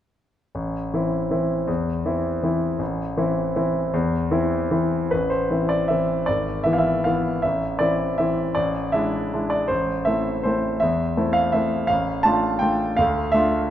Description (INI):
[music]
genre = classical, piano waltz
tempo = 144-172 BPM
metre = 3/4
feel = rubato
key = A minor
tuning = A4 = 441 Hz
[part]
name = clear concert grand piano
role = solo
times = 0.5-13.7 s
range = G#1 to A5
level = -20 LUFS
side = equal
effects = none
[sound]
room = moderate concert hall reverb, RT60 2.3 s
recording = dark, warm production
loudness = -20 LUFS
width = side -11 dB against mid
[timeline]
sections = 0.5-5.1 A section; 5.1-13.7 B section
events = none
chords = 0.5 Am; 6.3 E7/G#; 7.4 Am; 8.6 E7/A; 9.7 Am; 11.9 Dm/A